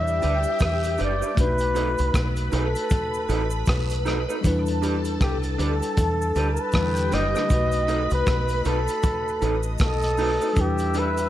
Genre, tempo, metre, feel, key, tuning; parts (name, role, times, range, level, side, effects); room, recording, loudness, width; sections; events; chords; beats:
lovers rock reggae; 78 BPM; 4/4; swing 60% on 16ths; E minor; A4 = 440 Hz
breathy flugelhorn; melody; 0.0-11.3 s; G4 to E5; -26 LUFS; equal; tape echo
phased string machine; second line; 0.0-11.3 s; G4 to E6; -32 LUFS; left 1 dB; ensemble chorus, phaser
bell-like tine electric piano; accompaniment; 0.0-11.3 s; D3 to B4; -31 LUFS; left 3 dB; medium stereo tremolo
deep dub fingered electric bass; bass; 0.0-11.3 s; F#1 to E2; -25 LUFS; equal
cabasa and guiro; percussion; 0.1-11.3 s; -44 LUFS; right 6 dB; tape echo
electric guitar through a small old amp; stabs; 0.2-11.1 s; D4 to B4; -31 LUFS; right 4 dB
crunchy breakbeat drum kit; drums; 0.2-11.3 s; hi-hat, kick drum, rim click; -26 LUFS; equal; gated reverb
light reverb, small room ambience; -21 LUFS; side -13 dB against mid
0.0-11.3 A section
0.0 Em7; 1.4 B7; 4.4 Em7; 7.5 B7; 10.6 Em7
0.61 | 1.38 2.14 2.91 3.67 | 4.44 5.21 5.97 6.74 | 7.50 8.27 9.04 9.80 | 10.57